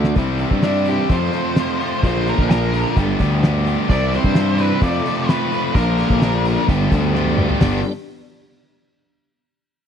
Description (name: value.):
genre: classic rock.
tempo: 129 BPM.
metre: 4/4.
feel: straight.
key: unclear.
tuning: A4 = 440 Hz.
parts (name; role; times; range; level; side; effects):
tonewheel organ; sustained chords; 0.0-0.2, 3.9-7.9 s; G3 to D5; -31 LUFS; equal; none.
cranked stack guitar; riff; 0.0-7.8 s; F2 to G4; -23 LUFS; left 14 dB; overdrive.
overdriven electric guitar; riff; 0.0-7.8 s; F2 to B4; -23 LUFS; right 14 dB; none.
fuzz picked electric bass; bass; 0.0-7.8 s; G1 to G2; -20 LUFS; equal; overdrive.
cloth-damped thuddy drum kit; drums; 0.0-7.7 s; hi-hat, kick drum, snare drum, toms; -18 LUFS; equal; none.
octave-fuzz lead guitar; melody; 0.6-6.7 s; D4 to D5; -24 LUFS; left 1 dB; distortion.
room: small room ambience.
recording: dry, close 1970s-style studio recording.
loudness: -15 LUFS.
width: side -8 dB against mid.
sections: 0.2-7.6 A section; 7.6-9.5 B section.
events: drum fill 0.0, 7.2-7.6; lead electric guitar solo 0.2-7.6.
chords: 0.2 C; 1.1 F; 2.0 Bb; 3.0 G; 3.9 C; 4.8 F; 5.8 Bb; 6.7 G.